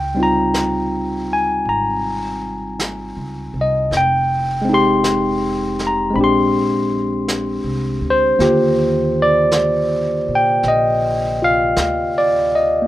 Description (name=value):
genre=jazz ballad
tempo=53 BPM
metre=4/4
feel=swing 68% on 8ths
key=Eb major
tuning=A4 = 440 Hz
part: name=barky tine electric piano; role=accompaniment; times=0.0-12.9 s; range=D3 to C6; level=-16 LUFS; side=equal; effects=none
part: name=upright bass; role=bass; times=0.0-12.8 s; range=F1 to Bb2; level=-26 LUFS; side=right 1 dB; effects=none
part: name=vintage brush drum kit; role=drums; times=0.5-12.9 s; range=brushed snare drum, hi-hat, snare drum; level=-28 LUFS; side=right 1 dB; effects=none
room=little or no reverb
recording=rough home demo mix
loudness=-15 LUFS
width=side -14 dB against mid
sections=0.0-12.9 A section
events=none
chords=0.0 Dbmaj9#11; 3.9 Fm9; 6.1 Bb13; 8.4 Ebmaj9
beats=0.52 1.65 2.77 | 3.90 5.02 6.14 7.26 | 8.39 9.51 10.63 11.76